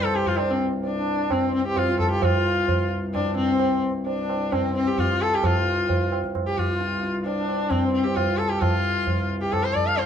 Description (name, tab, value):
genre	indian classical, Hindustani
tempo	131 BPM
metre	7/4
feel	straight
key	C raga durga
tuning	A4 = 444 Hz
part	clear sarangi	melody	0.0-10.1 s	C4 to F5	-24 LUFS	left 3 dB	none
part	hand-pumped harmonium	second line	0.0-10.1 s	C4 to F5	-29 LUFS	right 1 dB	none
part	hand-pumped harmonium	drone	0.0-10.1 s	C2 to G2	-30 LUFS	left 1 dB	none
part	tabla	percussion	0.1-10.1 s	none	-26 LUFS	right 2 dB	none
room	wet studio reverb, RT60 0.6 s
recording	band playing live in one room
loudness	-21 LUFS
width	side -8 dB against mid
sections	0.0-10.1 A section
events	none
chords	none